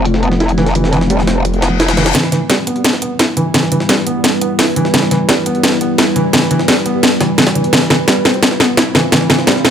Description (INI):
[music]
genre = dark technical drum and bass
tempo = 172 BPM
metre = 4/4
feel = straight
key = E phrygian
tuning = A4 = 437 Hz
[part]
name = deep dark ambient pad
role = sustained chords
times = 0.0-9.7 s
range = G3 to C5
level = -18 LUFS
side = left 1 dB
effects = chorus, built-in reverb
[part]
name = growl bass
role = bass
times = 0.0-2.1 s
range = F1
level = -14 LUFS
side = equal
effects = chorus, tube saturation
[part]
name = drum and bass drum kit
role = drums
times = 0.1-9.7 s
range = hi-hat, snare drum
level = -13 LUFS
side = equal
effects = overdrive, low-pass filter on hats, small room ambience, low-pass filter on snare
[part]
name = jungle sampler-style drum kit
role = drums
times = 0.1-9.7 s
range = hi-hat, snare drum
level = -21 LUFS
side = equal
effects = high-pass filter on hats, small room ambience, high-pass filter on snare
[part]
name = felt-muted upright piano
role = arpeggios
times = 0.2-9.7 s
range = E3 to E4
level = -16 LUFS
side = right 1 dB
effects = low-pass filter, digital delay
[part]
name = reverse cymbal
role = sound effects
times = 1.6-2.1 s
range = none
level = -22 LUFS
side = left 7 dB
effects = none
[sound]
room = light reverb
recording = low-pass filter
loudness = -10 LUFS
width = side -8 dB against mid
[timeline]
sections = 0.0-2.1 A section; 2.1-9.7 B section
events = filter sweep on ambient pad 0.0-2.1; filter sweep 0.0-2.1; reverse cymbal 1.6-2.1; build-up 2.1-9.7; drum fill 2.1-9.7; filter sweep on felt piano 2.1-9.7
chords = 0.0 F; 2.1 Em; 7.7 F